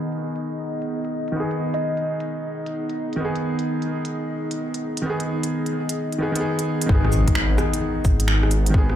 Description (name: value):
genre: future garage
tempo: 130 BPM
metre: 4/4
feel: swing 66% on 16ths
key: G# minor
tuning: A4 = 442 Hz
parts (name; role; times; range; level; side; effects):
- clear upright piano; accompaniment; 0.0-9.0 s; D#3 to G#4; -26 LUFS; right 1 dB; sidechain pumping, digital delay
- warbly tape-like pad; sustained chords; 0.0-9.0 s; B3 to D#5; -28 LUFS; equal; chorus, built-in reverb, sidechain pumping
- organic electronic drum kit; drums; 0.1-9.0 s; cabasa, finger snaps, hi-hat, rim click; -28 LUFS; equal; overdrive
- kalimba; melody; 1.7-2.0 s; D#5; -30 LUFS; equal; tape echo
- swelling detuned saw bass; bass; 6.9-9.0 s; G#1; -20 LUFS; equal; tube saturation, sidechain pumping
- electronic kick drum; drums; 6.9-8.9 s; none; -18 LUFS; equal; overdrive
- impact; sound effects; 6.9-8.7 s; none; -28 LUFS; left 1 dB; none
room: moderate concert hall reverb, RT60 1.8 s, digital ambience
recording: low-pass filter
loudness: -21 LUFS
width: side -11 dB against mid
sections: 0.0-6.9 A section; 6.9-9.0 B section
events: filter sweep 0.0-6.9; impact 6.9-8.7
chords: 0.0 G#m